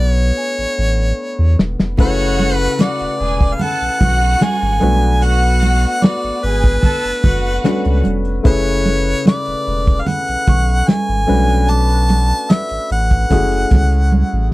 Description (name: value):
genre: lush 1970s-style soul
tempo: 74 BPM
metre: 4/4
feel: straight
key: F# minor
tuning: A4 = 436 Hz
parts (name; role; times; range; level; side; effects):
- warm harmonica; melody; 0.0-14.5 s; B4 to A5; -19 LUFS; equal; none
- clear grand piano; accompaniment; 0.0-14.5 s; C#3 to B4; -22 LUFS; left 3 dB; none
- saturated sub bass; bass; 0.0-14.5 s; E1 to E2; -16 LUFS; equal; none
- worn celesta; texture; 0.4-13.9 s; F#5 to F#6; -36 LUFS; right 3 dB; none
- warm soul drum kit; drums; 1.6-14.1 s; hi-hat, kick drum, snare drum; -13 LUFS; equal; none
- warm studio violin section; second line; 2.0-8.0 s; F#4 to A5; -24 LUFS; right 2 dB; none
- congas; percussion; 2.0-14.3 s; none; -21 LUFS; right 3 dB; none
room: little or no reverb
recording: dry, close 1970s-style studio recording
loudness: -13 LUFS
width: side -19 dB against mid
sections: 0.0-14.5 A section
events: drum fill 1.2-2.0, 14.1-14.5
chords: 0.0 Bm9; 2.0 F#m11; 4.8 Bm9; 8.5 F#m11; 11.3 Bm9; 13.3 F#m7